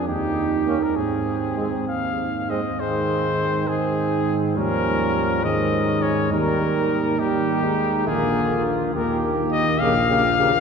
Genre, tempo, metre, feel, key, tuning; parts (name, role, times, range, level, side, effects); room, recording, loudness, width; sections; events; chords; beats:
classical, brass quintet; 68 BPM (dotted quarters); 6/8; straight; Ab major; A4 = 440 Hz
clear cornet; melody; 0.0-10.6 s; G4 to F5; -24 LUFS; left 5 dB
warm trombone; accompaniment; 0.0-10.5 s; Db3 to Eb4; -26 LUFS; right 3 dB
mellow tuba; bass; 0.1-10.6 s; Bb1 to Ab2; -25 LUFS; right 3 dB
mellow trumpet; second line; 0.7-10.5 s; C4 to G4; -29 LUFS; right 4 dB
warm French horn; accompaniment; 0.7-10.5 s; G3 to Bb3; -27 LUFS; left 2 dB
wet cathedral reverb, RT60 5.0 s; heard from further back in the room; -19 LUFS; side -6 dB against mid
0.0-2.8 A section; 2.8-10.6 B section
0.1 Eb; 1.0 Ab; 4.6 Eb9; 5.4 Ab; 6.3 Eb; 8.1 Bb7; 8.9 Eb; 9.8 Gm7b5/Bb
0.08 | 0.98 1.88 | 2.79 3.68 | 4.57 5.45 | 6.32 7.20 | 8.07 8.95 | 9.81